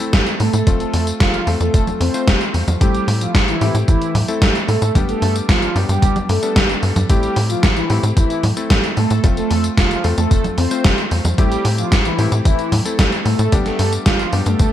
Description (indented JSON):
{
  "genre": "italo disco",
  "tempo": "112 BPM",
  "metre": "4/4",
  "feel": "straight",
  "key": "A minor",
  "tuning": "A4 = 439 Hz",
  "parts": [
    { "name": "warm electric grand piano", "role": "stabs", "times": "0.0-14.7 s", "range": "G3 to C5", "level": "-24 LUFS", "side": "left 4 dB", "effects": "none" },
    { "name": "gated 80s digital drum machine", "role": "drums", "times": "0.0-14.7 s", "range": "congas, hi-hat, snare drum, tambourine", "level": "-20 LUFS", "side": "right 1 dB", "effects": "gated reverb, gated reverb snare" },
    { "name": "tight sequencer bass", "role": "bass", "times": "0.1-14.7 s", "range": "F1 to A2", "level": "-19 LUFS", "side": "equal", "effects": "none" },
    { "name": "electronic kick drum", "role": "drums", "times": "0.1-14.7 s", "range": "none", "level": "-15 LUFS", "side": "equal", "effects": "none" },
    { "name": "mellow synth brass", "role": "melody", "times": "0.4-14.7 s", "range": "E3 to C5", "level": "-22 LUFS", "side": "equal", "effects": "chorus, digital delay" }
  ],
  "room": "light reverb",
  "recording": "bright 1980s-style digital production",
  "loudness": "-14 LUFS",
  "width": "side -11 dB against mid",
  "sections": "0.0-14.7 A section",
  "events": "none",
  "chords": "0.0 Am; 0.7 F; 2.8 Am7; 5.0 G; 7.1 Am7; 9.2 F; 11.4 Am7; 13.5 G",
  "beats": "0.13 | 0.67 1.20 1.74 2.27 | 2.81 3.35 3.88 4.42 | 4.95 5.49 6.02 6.56 | 7.10 7.63 8.17 8.70 | 9.24 9.77 10.31 10.85 | 11.38 11.92 12.45 12.99 | 13.52 14.06 14.60"
}